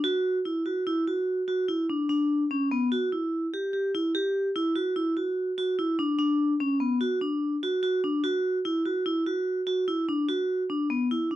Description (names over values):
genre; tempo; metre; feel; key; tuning
progressive instrumental, progressive; 146 BPM; 5/4; straight; B minor; A4 = 440 Hz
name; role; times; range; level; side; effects
vibraphone with hard mallets; solo; 0.0-11.4 s; B3 to G4; -25 LUFS; equal; none
room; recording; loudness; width
moderate booth ambience, RT60 0.2 s; dry, close 1970s-style studio recording; -25 LUFS; side -14 dB against mid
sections
0.0-10.3 A section; 10.3-11.4 B section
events
none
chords
none